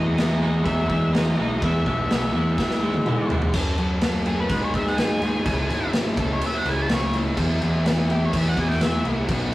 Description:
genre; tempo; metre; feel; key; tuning
indie rock; 125 BPM; 4/4; straight; E major; A4 = 435 Hz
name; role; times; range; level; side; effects
octave-fuzz lead guitar; melody; 0.0-9.0 s; G4 to A5; -29 LUFS; equal; distortion
biting overdriven guitar; riff; 0.0-9.5 s; E2 to A4; -30 LUFS; left 2 dB; none
twelve-string electric guitar; riff; 0.0-3.5 s; E3 to E4; -29 LUFS; right 2 dB; none
fuzz picked electric bass; bass; 0.0-9.5 s; G#1 to G#2; -24 LUFS; equal; overdrive
raw garage drum kit; drums; 0.2-9.4 s; crash cymbal, kick drum, snare drum, toms; -24 LUFS; equal; none
room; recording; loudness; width
moderate studio reverb, RT60 0.6 s; rough rehearsal-room recording, warm saturation, vinyl crackle; -20 LUFS; side -17 dB against mid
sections
0.0-3.5 A section; 3.5-9.5 B section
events
drum fill 2.6-3.5; lead electric guitar solo 3.5-9.5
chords
0.0 Emaj7; 1.6 E; 3.5 F#m; 4.5 G#m; 5.5 C#m; 6.2 A/C#; 7.4 E

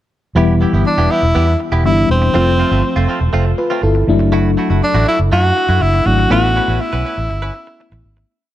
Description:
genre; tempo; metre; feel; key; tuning
pop; 121 BPM; 4/4; straight; unclear; A4 = 440 Hz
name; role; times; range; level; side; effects
FM electric piano with auto-pan; accompaniment; 0.4-8.3 s; E3 to B4; -17 LUFS; left 3 dB; none
direct-recorded clean electric guitar; riff; 0.4-8.2 s; A3 to B4; -23 LUFS; right 3 dB; wide subtle chorus
vintage muted fingered electric bass; bass; 0.4-8.2 s; E1 to F#2; -15 LUFS; equal; none
clear tenor saxophone; melody; 0.9-8.0 s; C4 to F#4; -17 LUFS; equal; digital delay
room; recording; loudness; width
light reverb; dark, warm production; -12 LUFS; side -13 dB against mid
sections
0.4-8.3 verse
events
fade-out 6.3-8.3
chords
0.4 Em; 2.3 F; 4.1 Dadd9/F#; 6.3 Aadd9

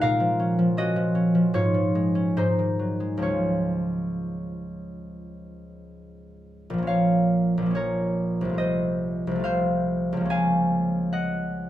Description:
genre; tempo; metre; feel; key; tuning
classical, solo harp piece; 65-79 BPM; 4/4; rubato; Db major, Bb minor from 6.9 s; A4 = 440 Hz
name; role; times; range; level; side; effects
concert harp; solo; 0.0-11.7 s; Bb1 to Ab5; -22 LUFS; equal; none
room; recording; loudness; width
light reverb; none; -22 LUFS; side -13 dB against mid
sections
0.0-6.9 A section; 6.9-11.7 B section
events
none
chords
0.0 Bbm; 1.6 Db/Ab; 2.4 Ab7; 3.2 Db; 6.9 Bbm; 8.6 F7/C; 10.3 Bbm/Db

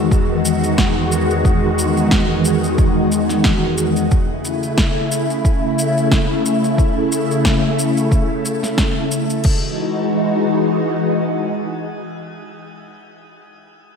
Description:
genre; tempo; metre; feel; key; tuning
sunset chillout; 90 BPM; 4/4; swing 56% on 16ths; E major; A4 = 440 Hz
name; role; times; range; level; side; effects
soft string machine; sustained chords; 0.0-12.9 s; E2 to F#4; -17 LUFS; left 1 dB; phaser, ensemble chorus, shimmer reverb
deep house drum kit; drums; 0.1-9.6 s; crash cymbal, shaker, snare drum; -23 LUFS; equal; overdrive, studio reverb
electronic kick drum; drums; 0.1-9.6 s; none; -17 LUFS; equal; overdrive, studio reverb
room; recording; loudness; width
wet lush hall reverb, RT60 1.8 s; dreamy mix soaked in reverb; -15 LUFS; side -6 dB against mid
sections
0.0-9.4 A section; 9.4-12.1 B section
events
none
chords
0.0 Emaj9; 4.1 A/C#; 9.4 Emaj9

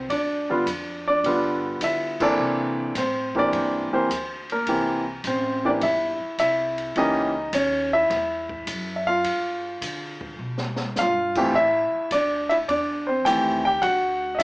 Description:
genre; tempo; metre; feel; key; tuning
jazz piano trio; 105 BPM; 4/4; swing 69% on 8ths; unclear; A4 = 439 Hz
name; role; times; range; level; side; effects
warm grand piano; melody; 0.0-14.4 s; D3 to G5; -21 LUFS; equal; none
upright bass; bass; 0.0-14.4 s; G1 to D3; -36 LUFS; equal; none
open jazz drum kit; drums; 0.1-14.4 s; crash cymbal, hi-hat, kick drum, ride cymbal, snare drum; -33 LUFS; left 1 dB; none
room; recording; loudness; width
wet club reverb, RT60 0.7 s; heard from further back in the room, small speaker sound; -21 LUFS; side -24 dB against mid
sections
0.0-14.4 A section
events
band accent 2.1; drum fill 10.4-11.0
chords
0.0 G7; 2.4 C7; 7.0 C#m; 9.2 G7; 11.5 Am7; 13.8 D

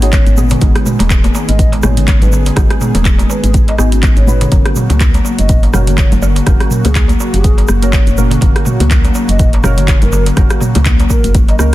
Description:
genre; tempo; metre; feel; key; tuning
afro house; 123 BPM; 4/4; swing 57% on 16ths; unclear; A4 = 442 Hz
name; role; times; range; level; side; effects
hollow bass bansuri; melody; 0.0-11.7 s; G#4 to D#5; -24 LUFS; equal; digital delay
warm analog pad; sustained chords; 0.0-11.7 s; C#3 to G#4; -25 LUFS; equal; chorus, sidechain pumping
buzzing kalimba; arpeggios; 0.0-11.7 s; D#3 to D#4; -20 LUFS; left 1 dB; sidechain pumping, digital delay
deep mellow chord stab; stabs; 0.0-11.7 s; A#3 to B4; -23 LUFS; right 1 dB; chorus, sidechain pumping, digital delay
woody FM bass; bass; 0.0-11.7 s; D#1 to C#2; -13 LUFS; equal; sidechain pumping
afro-pop drum kit; drums; 0.0-11.7 s; handclaps, hi-hat, rim click, toms; -18 LUFS; right 1 dB; none
congas; percussion; 0.0-11.5 s; none; -22 LUFS; left 2 dB; none
egg shaker; percussion; 0.0-11.7 s; none; -29 LUFS; right 4 dB; none
electronic kick drum; drums; 0.1-11.5 s; none; -11 LUFS; equal; none
darbuka; percussion; 0.5-11.6 s; none; -22 LUFS; right 2 dB; none
room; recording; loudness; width
little or no reverb; dense, heavily limited modern master; -9 LUFS; side -16 dB against mid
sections
0.0-11.7 A section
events
none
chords
0.0 G#m7; 4.5 F#

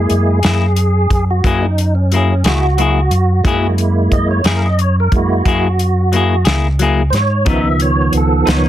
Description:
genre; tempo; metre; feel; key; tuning
slow blues; 60 BPM (dotted quarters); 12/8; straight; F# mixolydian; A4 = 437 Hz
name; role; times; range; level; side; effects
tonewheel organ; sustained chords; 0.0-8.7 s; D#3 to E5; -17 LUFS; right 2 dB; chorus vibrato, slow rotary speaker
fingered electric bass; bass; 0.0-8.7 s; C#2 to G#2; -14 LUFS; equal; none
warm soul drum kit; drums; 0.1-8.6 s; hi-hat, kick drum, snare drum; -17 LUFS; equal; none
clean electric guitar; accompaniment; 0.4-8.7 s; C#3 to G#4; -18 LUFS; left 5 dB; harmonic tremolo
room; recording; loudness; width
little or no reverb; dense, heavily limited modern master; -12 LUFS; side -12 dB against mid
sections
0.0-8.7 A section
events
tonewheel organ solo 0.0-8.7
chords
0.0 F#9; 7.5 C#9

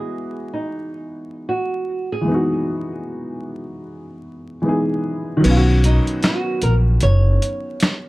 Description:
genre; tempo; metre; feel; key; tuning
lo-fi hip hop; 76 BPM; 4/4; swing 57% on 16ths; B major; A4 = 440 Hz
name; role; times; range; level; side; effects
nylon-string guitar; melody; 0.0-8.1 s; D#4 to C#5; -25 LUFS; right 2 dB; low-pass filter
dark upright piano; accompaniment; 0.0-8.1 s; D#3 to D#5; -22 LUFS; equal; cassette tape, low-pass filter
upright bass; bass; 5.4-7.4 s; F#1 to B1; -15 LUFS; equal; none
dusty soul sampler-style drum kit; drums; 5.4-8.0 s; crash cymbal, handclaps, hi-hat, snare drum; -21 LUFS; equal; none
room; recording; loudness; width
moderate studio reverb, RT60 0.5 s; vinyl crackle; -17 LUFS; side -20 dB against mid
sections
0.0-5.4 A section; 5.4-8.1 B section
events
filter sweep 0.0-5.4; kick muted 5.4-8.1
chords
0.0 Emaj9; 5.4 Bmaj7

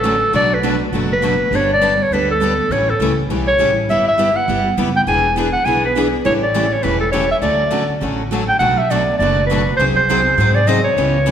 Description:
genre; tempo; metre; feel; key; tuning
acoustic string swing (jazz manouche); 203 BPM; 4/4; swing 60% on 8ths; D major; A4 = 440 Hz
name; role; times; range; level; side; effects
clear clarinet; melody; 0.0-11.3 s; A4 to G#5; -16 LUFS; right 1 dB; none
picked steel-string acoustic guitar; accompaniment; 0.0-11.3 s; B2 to B#4; -22 LUFS; left 4 dB; none
picked steel-string acoustic guitar; accompaniment; 0.0-11.3 s; B2 to B#4; -22 LUFS; right 4 dB; none
upright bass; bass; 0.0-11.3 s; E1 to G#2; -22 LUFS; equal; none
room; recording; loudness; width
wet concert hall reverb, RT60 1.7 s; recorded in a church or concert hall; -14 LUFS; side -9 dB against mid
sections
0.0-8.6 A section; 8.6-11.3 B section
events
none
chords
0.3 Bm7; 1.5 Gadd9; 2.7 A7; 3.9 G6; 5.1 E7; 6.2 A7; 7.4 Dmaj7; 8.6 Bm7; 9.8 G#7/B#

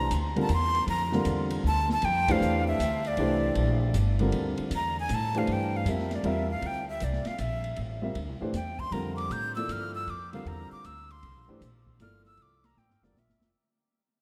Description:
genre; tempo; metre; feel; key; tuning
modal jazz; 156 BPM; 3/4; swing 66% on 8ths; D minor; A4 = 441 Hz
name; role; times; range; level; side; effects
breathy bright jazz flute; melody; 0.0-13.5 s; D5 to G6; -34 LUFS; equal; none
warm baby grand piano; accompaniment; 0.0-13.2 s; D3 to E5; -34 LUFS; equal; none
upright bass; bass; 0.0-13.5 s; F1 to A2; -33 LUFS; equal; none
open jazz drum kit; drums; 0.1-13.5 s; hi-hat, kick drum, ride cymbal, snare drum; -42 LUFS; equal; none
room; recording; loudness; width
wet cathedral reverb, RT60 6.4 s; in a vast, echoing space; -28 LUFS; mono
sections
0.0-4.3 A section; 4.3-13.5 B section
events
band accent 2.2; fade-out 4.3-13.5; flute solo 4.3-13.5; drum fill 12.8-13.5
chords
0.0 D9sus4; 8.9 C9sus4

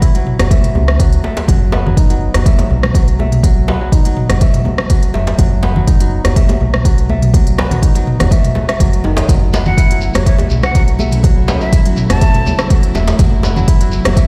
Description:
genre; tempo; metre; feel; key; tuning
afro house; 123 BPM; 4/4; straight; unclear; A4 = 440 Hz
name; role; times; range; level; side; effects
kora; arpeggios; 0.0-14.3 s; D#3 to E4; -23 LUFS; equal; sidechain pumping, tape echo
deep house drum kit; drums; 0.0-14.3 s; hi-hat, rim click, toms; -22 LUFS; equal; none
electronic kick drum; drums; 0.0-14.3 s; none; -14 LUFS; equal; none
congas; percussion; 0.2-14.1 s; none; -25 LUFS; equal; none
round analog bass; bass; 0.4-14.3 s; E1 to C#2; -18 LUFS; equal; sidechain pumping
djembe; percussion; 0.4-14.1 s; none; -24 LUFS; equal; none
dark studio string section; sustained chords; 9.3-14.3 s; C#3 to E4; -26 LUFS; equal; sidechain pumping
shekere; percussion; 9.3-14.3 s; none; -32 LUFS; equal; none
breathy bright concert flute; melody; 9.7-12.6 s; C#5 to A5; -25 LUFS; equal; tape echo
room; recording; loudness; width
small room ambience; played on a big sound system in a bare room, stone room reverb; -13 LUFS; mono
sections
0.0-14.3 A section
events
none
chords
0.0 F#m7; 1.5 B/F#; 9.3 F#m7

